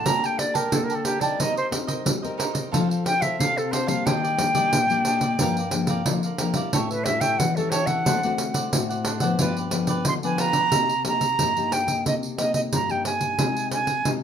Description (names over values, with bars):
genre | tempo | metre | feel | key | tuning
samba and choro | 90 BPM | 4/4 | straight | G minor, C minor from 10.7 s | A4 = 441 Hz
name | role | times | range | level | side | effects
silver concert flute | melody | 0.0-14.1 s | G4 to C6 | -24 LUFS | right 1 dB | none
cavaquinho | accompaniment | 0.0-10.7 s | D4 to A5 | -30 LUFS | right 5 dB | none
nylon-string guitar | accompaniment | 0.0-14.2 s | G2 to Bb4 | -27 LUFS | left 5 dB | none
pandeiro | percussion | 0.1-14.2 s | none | -26 LUFS | right 2 dB | none
room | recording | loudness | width
wet studio reverb, RT60 0.7 s | minimal, uncompressed stereo recording | -21 LUFS | side -8 dB against mid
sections
0.0-10.7 A section; 10.7-14.2 B section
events
flute solo 0.0-10.7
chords
0.1 Gmadd9; 1.4 Cm7/G; 2.7 F; 4.1 Ebmaj7; 5.4 Gm7; 6.7 A7; 8.1 D7; 9.4 G7; 10.7 Cm7; 13.4 Abmaj7/C